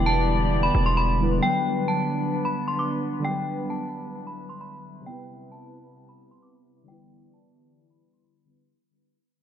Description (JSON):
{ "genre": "hip hop", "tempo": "132 BPM", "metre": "4/4", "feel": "half-time", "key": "unclear", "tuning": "A4 = 440 Hz", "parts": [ { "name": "metallic FM bell", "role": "melody", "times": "0.0-8.5 s", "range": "G5 to D6", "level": "-27 LUFS", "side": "equal", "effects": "chorus, low-pass filter, analog delay" }, { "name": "warbly lo-fi synth keys", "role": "accompaniment", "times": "0.0-8.7 s", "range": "C3 to B4", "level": "-28 LUFS", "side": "equal", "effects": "chorus, low-pass filter, analog delay" }, { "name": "dark studio string section", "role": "sustained chords", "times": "0.0-8.7 s", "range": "C3 to D5", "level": "-32 LUFS", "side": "equal", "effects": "none" }, { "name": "distorted 808-style bass", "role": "bass", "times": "0.0-1.4 s", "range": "E1", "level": "-23 LUFS", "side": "equal", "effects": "distortion" } ], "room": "light reverb", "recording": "echo-heavy mix, low-pass filter", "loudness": "-22 LUFS", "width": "side -10 dB against mid", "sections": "0.0-8.7 A section", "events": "fade-out 0.0-8.7", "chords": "0.0 Em7; 1.4 Gmaj7; 5.1 Cmaj7; 6.9 Em7" }